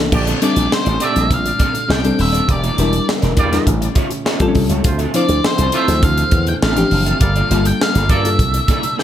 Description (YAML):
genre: polished 1980s jazz-funk pop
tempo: 102 BPM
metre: 4/4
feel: straight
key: unclear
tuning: A4 = 440 Hz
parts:
  - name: bell-like FM electric piano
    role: accompaniment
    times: 0.0-8.4 s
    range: C2 to C5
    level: -20 LUFS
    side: left 3 dB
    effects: lush chorus
  - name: mellow horn section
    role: second line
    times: 0.1-8.3 s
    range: G3 to D5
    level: -25 LUFS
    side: right 3 dB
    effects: ping-pong delay
  - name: chorused pulse-width pad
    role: sustained chords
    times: 0.1-9.0 s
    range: Bb2 to A4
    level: -28 LUFS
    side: right 2 dB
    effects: none
  - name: electric guitar at the edge of break-up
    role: riff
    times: 0.1-9.0 s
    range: Bb3 to F5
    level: -26 LUFS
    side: right 2 dB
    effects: analog chorus
  - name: slap bass with an envelope filter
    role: bass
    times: 0.1-8.6 s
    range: Eb1 to G2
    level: -18 LUFS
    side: equal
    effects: none
  - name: crisp fusion drum kit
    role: drums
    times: 0.1-9.0 s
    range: crash cymbal, hi-hat, kick drum, snare drum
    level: -19 LUFS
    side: equal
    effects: gated reverb
  - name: octave-fuzz lead guitar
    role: melody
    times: 0.4-9.0 s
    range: C5 to G5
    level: -20 LUFS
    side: equal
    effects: distortion
room: light reverb, small room ambience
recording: none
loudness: -13 LUFS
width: side -11 dB against mid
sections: 0.1-9.0 A section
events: none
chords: 0.1 Bbmaj13; 2.5 Em7b5; 3.7 A7b13; 4.9 Dm9; 7.2 Gm9; 8.4 C13